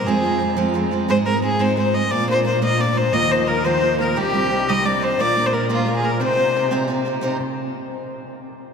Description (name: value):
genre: celtic folk, Celtic jig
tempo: 117 BPM (dotted quarters)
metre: 6/8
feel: straight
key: C minor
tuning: A4 = 440 Hz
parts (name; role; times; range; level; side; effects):
- warm fiddle; melody; 0.0-6.9 s; F4 to Eb5; -20 LUFS; left 2 dB; none
- picked steel-string acoustic guitar; accompaniment; 0.0-7.4 s; C3 to C5; -22 LUFS; right 3 dB; none
- dark cello; bass; 0.0-7.4 s; C2 to C3; -26 LUFS; equal; none
- musette accordion; second line; 3.1-6.8 s; F4 to Eb5; -28 LUFS; left 4 dB; none
room: wet cathedral reverb, RT60 6.4 s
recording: recorded in a church or concert hall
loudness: -17 LUFS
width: side -6 dB against mid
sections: 0.0-7.2 A section; 7.2-8.3 B section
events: none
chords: 0.1 Fm; 1.1 Ab; 2.1 Bb; 3.1 Ebsus2; 4.2 Cmadd9; 5.2 Bb; 6.2 Cm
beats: | 0.07 0.58 | 1.09 1.60 | 2.11 2.62 | 3.14 3.65 | 4.16 4.67 | 5.18 5.69 | 6.21 6.72 | 7.23